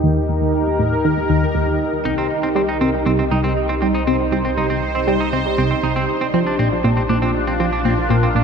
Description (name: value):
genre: ambient, sequencer-driven space music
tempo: 119 BPM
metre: 4/4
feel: straight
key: C minor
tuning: A4 = 441 Hz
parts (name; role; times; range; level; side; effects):
- sweeping resonant pad; sustained chords; 0.0-8.4 s; D4 to C5; -20 LUFS; right 1 dB; chorus
- tight sequenced synth; riff; 0.0-8.4 s; C2 to G3; -19 LUFS; equal; chorus, phaser, analog delay
- round analog bass; bass; 0.0-8.4 s; Bb1 to Eb2; -27 LUFS; equal; none
- semi-hollow electric guitar; arpeggios; 2.1-8.4 s; C4 to Eb4; -24 LUFS; right 2 dB; auto-pan, analog delay
room: wet huge ambient reverb, RT60 8.1 s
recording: none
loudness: -16 LUFS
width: side -6 dB against mid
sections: 0.0-8.4 A section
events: none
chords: 0.0 Eb; 2.1 Cm; 6.1 Bb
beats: | 0.04 0.54 1.04 1.55 | 2.05 2.56 3.06 3.56 | 4.07 4.57 5.08 5.58 | 6.08 6.59 7.09 7.60 | 8.10